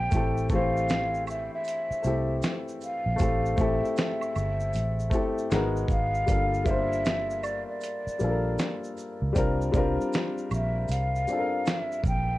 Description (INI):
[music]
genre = lo-fi hip hop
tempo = 78 BPM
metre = 4/4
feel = swing 63% on 16ths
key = unclear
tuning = A4 = 440 Hz
[part]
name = breathy mellow concert flute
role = melody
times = 0.0-12.4 s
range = D5 to G5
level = -30 LUFS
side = equal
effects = low-pass filter, analog delay, plate reverb
[part]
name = warm upright piano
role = accompaniment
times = 0.0-12.4 s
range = E3 to C5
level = -30 LUFS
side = left 2 dB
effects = cassette tape, low-pass filter, plate reverb
[part]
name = vintage muted fingered electric bass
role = bass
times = 0.0-12.4 s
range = G1 to C#2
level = -29 LUFS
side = right 1 dB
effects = none
[part]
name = dusty soul sampler-style drum kit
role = drums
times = 0.1-12.3 s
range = hi-hat, kick drum, shaker, snare drum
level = -28 LUFS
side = right 1 dB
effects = none
[part]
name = maracas and woodblock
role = percussion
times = 0.1-12.3 s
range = none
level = -44 LUFS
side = right 7 dB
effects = none
[sound]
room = moderate studio ambience, RT60 0.5 s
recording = cassette tape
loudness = -25 LUFS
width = side -17 dB against mid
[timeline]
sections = 0.0-12.4 A section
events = none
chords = 0.1 Am7; 5.5 Abm7; 6.3 Gm7; 9.3 C9sus4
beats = | 0.12 0.89 1.66 2.42 | 3.19 3.96 4.73 5.50 | 6.27 7.04 7.81 8.58 | 9.35 10.12 10.89 11.66